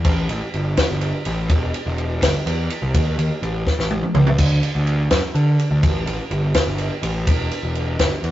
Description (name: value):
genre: math rock and midwest emo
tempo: 83 BPM (dotted quarters)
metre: 6/8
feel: straight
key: unclear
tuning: A4 = 440 Hz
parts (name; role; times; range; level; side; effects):
- fuzz picked electric bass; bass; 0.0-8.3 s; E1 to D3; -20 LUFS; equal; overdrive
- compact cocktail drum kit; drums; 0.0-8.3 s; crash cymbal, kick drum, ride cymbal, snare drum, toms; -20 LUFS; equal; none
room: wet stone room reverb, RT60 1.1 s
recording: rough rehearsal-room recording, tube saturation, nothing above 7.7 kHz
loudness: -17 LUFS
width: side -14 dB against mid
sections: 0.0-8.3 A section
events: drum fill 3.7-4.4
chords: none